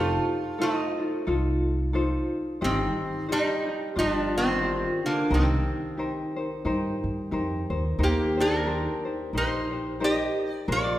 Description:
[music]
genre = Hawaiian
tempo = 89 BPM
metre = 4/4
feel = swing 58% on 8ths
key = C minor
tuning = A4 = 443 Hz
[part]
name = lap resonator guitar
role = melody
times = 0.0-11.0 s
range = D3 to Eb5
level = -27 LUFS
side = equal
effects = none
[part]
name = vibraphone with medium mallets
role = second line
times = 0.0-11.0 s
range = Bb3 to A4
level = -34 LUFS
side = right 2 dB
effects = none
[part]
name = tenor ukulele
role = accompaniment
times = 0.0-11.0 s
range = D4 to Eb5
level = -30 LUFS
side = left 2 dB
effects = none
[part]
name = upright bass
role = bass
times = 0.0-11.0 s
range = F1 to G2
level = -29 LUFS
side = equal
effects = none
[sound]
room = wet recital hall reverb, RT60 1.8 s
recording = recorded in a church or concert hall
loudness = -24 LUFS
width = side -14 dB against mid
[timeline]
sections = 0.0-8.0 A section; 8.0-11.0 B section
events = none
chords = 0.0 F7; 2.6 Cm/G; 4.0 G7sus4; 5.3 Cm7; 8.0 Eb6

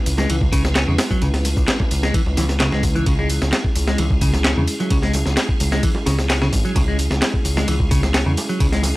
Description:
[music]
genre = breakbeat, breaks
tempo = 130 BPM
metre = 4/4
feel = straight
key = C# minor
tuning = A4 = 440 Hz
[part]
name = tonewheel organ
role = sustained chords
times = 0.0-9.0 s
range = G#3 to B4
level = -27 LUFS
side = equal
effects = overdrive, chorus vibrato, slow rotary speaker, vintage 12-bit sampler grit, sidechain pumping
[part]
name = overdriven picked electric bass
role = bass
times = 0.1-8.9 s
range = G#1 to E2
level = -20 LUFS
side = equal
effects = tube saturation
[part]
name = breakbeat sampler-style drum kit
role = drums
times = 0.1-8.9 s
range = hi-hat, kick drum, ride cymbal, snare drum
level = -20 LUFS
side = equal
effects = none
[part]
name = punchy analog drum machine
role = drums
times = 0.1-8.9 s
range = handclaps, hi-hat, tambourine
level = -28 LUFS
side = left 1 dB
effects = overdrive
[part]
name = clean electric guitar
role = riff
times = 0.2-8.8 s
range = C#3 to C#4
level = -23 LUFS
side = equal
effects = vintage 12-bit sampler grit, tape echo
[part]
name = congas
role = percussion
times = 0.2-8.9 s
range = none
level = -31 LUFS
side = right 2 dB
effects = none
[sound]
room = digital ambience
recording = dry, gritty hardware recording, cassette tape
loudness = -16 LUFS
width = side -19 dB against mid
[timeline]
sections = 0.0-9.0 A section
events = none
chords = 0.0 C#m7

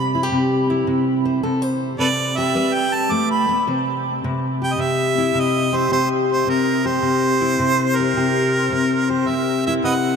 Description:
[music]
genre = acoustic country blues, solo or duo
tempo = 107 BPM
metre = 4/4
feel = swing 68% on 8ths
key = C major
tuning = A4 = 441 Hz
[part]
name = clear harmonica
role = melody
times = 0.0-10.2 s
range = A4 to D6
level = -21 LUFS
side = right 3 dB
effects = none
[part]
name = fingerpicked steel-string acoustic guitar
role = accompaniment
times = 0.0-10.2 s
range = C3 to C5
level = -19 LUFS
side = left 2 dB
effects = none
[sound]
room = wet huge ambient reverb, RT60 7.9 s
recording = in a vast, echoing space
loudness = -17 LUFS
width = side -6 dB against mid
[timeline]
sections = 0.0-3.7 A section; 3.7-10.2 B section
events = harmonica solo 0.0-3.7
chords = 0.0 C; 2.6 G; 3.7 C

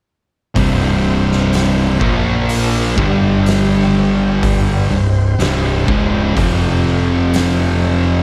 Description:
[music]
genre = stoner and doom metal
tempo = 62 BPM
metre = 4/4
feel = straight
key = unclear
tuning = A4 = 440 Hz
[part]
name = tonewheel organ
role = sustained chords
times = 0.5-8.2 s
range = F3 to C5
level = -29 LUFS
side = equal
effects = none
[part]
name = thick fuzz guitar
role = riff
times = 0.5-8.2 s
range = C2 to Bb3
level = -22 LUFS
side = equal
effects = distortion
[part]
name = distorted electric guitar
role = riff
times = 0.6-8.2 s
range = C2 to Bb3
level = -24 LUFS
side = equal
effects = distortion
[part]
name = thick fuzz guitar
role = riff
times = 0.6-8.2 s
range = C2 to Bb3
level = -20 LUFS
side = equal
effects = distortion
[part]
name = fuzz fingered electric bass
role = bass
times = 0.6-8.2 s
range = C1 to Bb1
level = -21 LUFS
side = equal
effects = overdrive
[part]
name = oversized low-tuned drum kit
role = drums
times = 0.6-7.6 s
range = hi-hat, kick drum, snare drum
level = -23 LUFS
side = equal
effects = none
[sound]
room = light reverb, small room ambience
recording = none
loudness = -15 LUFS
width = mono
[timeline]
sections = 0.6-8.2 A section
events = none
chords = 0.6 C5; 2.0 Bb5; 3.0 G5; 4.9 C5; 6.4 F5

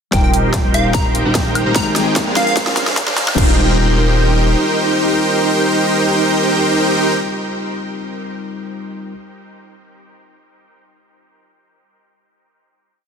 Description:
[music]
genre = future bass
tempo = 148 BPM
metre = 4/4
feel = half-time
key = Eb major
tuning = A4 = 440 Hz
[part]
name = plucky unison lead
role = melody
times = 0.1-2.5 s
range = F5 to Bb5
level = -22 LUFS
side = right 1 dB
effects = phaser, sidechain pumping, dub echo
[part]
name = bell-like tine electric piano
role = accompaniment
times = 0.1-9.1 s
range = G3 to G5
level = -23 LUFS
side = left 2 dB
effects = wide subtle chorus, sidechain pumping, dub echo
[part]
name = dense compressed supersaw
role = riff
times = 0.1-7.1 s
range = D4 to Bb5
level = -17 LUFS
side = right 1 dB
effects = sidechain pumping, low-pass filter, dub echo
[part]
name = saturated sub bass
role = bass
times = 0.1-4.6 s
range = Eb1 to Bb1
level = -19 LUFS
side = equal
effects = sidechain pumping
[part]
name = dubstep drum kit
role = drums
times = 0.1-3.5 s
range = crash cymbal, hi-hat, snare drum, woodblock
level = -21 LUFS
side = left 1 dB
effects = high-pass filter on snare, small room reverb, high-pass filter on hats, high-pass filter on perc, high-pass filter on cymbals
[part]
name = electronic kick drum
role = drums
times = 0.1-3.5 s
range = none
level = -18 LUFS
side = equal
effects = distortion, small room reverb
[part]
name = riser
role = sound effects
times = 0.7-3.4 s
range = none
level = -28 LUFS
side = right 1 dB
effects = none
[sound]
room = moderate huge ambient reverb, RT60 4.9 s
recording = dense, heavily limited modern master, high-pass filter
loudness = -13 LUFS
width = side -6 dB against mid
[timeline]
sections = 0.1-3.4 build; 3.4-6.6 final chord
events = build-up 0.1-3.4; drum fill 0.1-3.4; filter sweep on supersaw synth 0.1-3.4; filter sweep 0.1-3.4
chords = 0.1 Eb6; 1.8 Abmaj7; 2.4 Bb9; 3.4 Eb6

